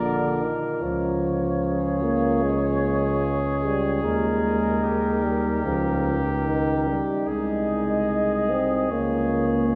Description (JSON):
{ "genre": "classical, brass quintet", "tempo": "74 BPM", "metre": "4/4", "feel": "rubato", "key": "unclear", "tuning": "A4 = 440 Hz", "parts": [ { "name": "dark cornet", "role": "melody", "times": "0.0-9.8 s", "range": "Bb4 to Eb5", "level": "-32 LUFS", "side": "equal", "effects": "none" }, { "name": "clear trumpet", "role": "second line", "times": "0.0-9.8 s", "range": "G4 to Bb4", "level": "-34 LUFS", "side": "equal", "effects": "none" }, { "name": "dark French horn", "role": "accompaniment", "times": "0.0-9.8 s", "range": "Eb4 to F4", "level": "-34 LUFS", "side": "equal", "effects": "none" }, { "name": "mellow euphonium", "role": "accompaniment", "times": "0.0-9.8 s", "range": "D3 to C4", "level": "-27 LUFS", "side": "equal", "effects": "none" }, { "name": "mellow bass trombone", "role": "bass", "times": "0.0-9.8 s", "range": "Bb1 to Eb2", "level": "-29 LUFS", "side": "equal", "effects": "none" } ], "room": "wet cathedral reverb, RT60 4.9 s", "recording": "small room ambience", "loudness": "-24 LUFS", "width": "mono", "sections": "0.0-9.8 A section", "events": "none", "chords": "0.0 Bb; 0.8 Db; 4.0 Eb; 5.6 Eb7/Db; 7.3 Ab/C; 8.9 Db" }